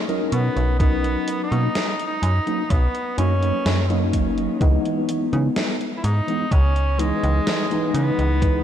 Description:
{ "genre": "vaporwave", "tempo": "63 BPM", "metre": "4/4", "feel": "straight", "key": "B major", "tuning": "A4 = 440 Hz", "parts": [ { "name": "clear tenor saxophone", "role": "melody", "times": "0.0-8.6 s", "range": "G#3 to E4", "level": "-27 LUFS", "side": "equal", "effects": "tape echo" }, { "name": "mellow tine electric piano", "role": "accompaniment", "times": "0.0-8.6 s", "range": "E3 to A#4", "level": "-24 LUFS", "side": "equal", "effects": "medium stereo tremolo, lush chorus, analog delay" }, { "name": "gated 80s digital drum machine", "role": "drums", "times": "0.1-8.6 s", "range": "hi-hat, snare drum", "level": "-29 LUFS", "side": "equal", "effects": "gated reverb, gated reverb snare, studio reverb" }, { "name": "slap-like FM bass", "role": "bass", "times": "0.3-8.6 s", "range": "F#1 to C#3", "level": "-20 LUFS", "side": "equal", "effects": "none" }, { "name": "electronic kick drum", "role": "drums", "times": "0.8-8.6 s", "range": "none", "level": "-19 LUFS", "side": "equal", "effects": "studio reverb" } ], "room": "wet lush hall reverb, RT60 2.7 s", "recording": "dreamy mix soaked in reverb", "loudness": "-18 LUFS", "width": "side -10 dB against mid", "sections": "0.0-8.6 A section", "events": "none", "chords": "0.0 Bmaj9; 4.6 C#m7", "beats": "| 0.80 1.75 2.71 3.66 | 4.61 5.56 6.51 7.47 | 8.42" }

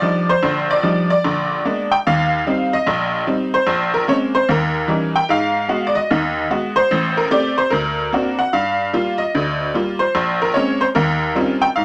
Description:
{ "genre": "solo jazz", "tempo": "148 BPM", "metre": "4/4", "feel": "swing 65% on 8ths", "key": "Eb major", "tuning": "A4 = 440 Hz", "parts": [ { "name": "tack piano", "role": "solo", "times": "0.0-11.8 s", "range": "A1 to G5", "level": "-18 LUFS", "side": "equal", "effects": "none" } ], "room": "wet studio reverb, RT60 0.6 s", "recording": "none", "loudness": "-18 LUFS", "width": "mono", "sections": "0.0-2.0 A section; 2.0-11.8 B section", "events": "none", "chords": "0.0 Ebmaj9; 1.2 Bb7b9; 2.0 Eb6; 3.7 Bbm9; 4.5 Eb7b9; 5.3 Abm7; 6.9 Am7; 7.7 Daug7; 8.5 Gm7; 10.1 Bbm9; 11.0 Eb13", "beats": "0.02 | 0.43 0.83 1.24 1.64 | 2.05 2.45 2.86 3.26 | 3.67 4.07 4.48 4.88 | 5.29 5.69 6.10 6.50 | 6.91 7.31 7.72 8.12 | 8.53 8.93 9.34 9.74 | 10.15 10.55 10.96 11.36 | 11.76" }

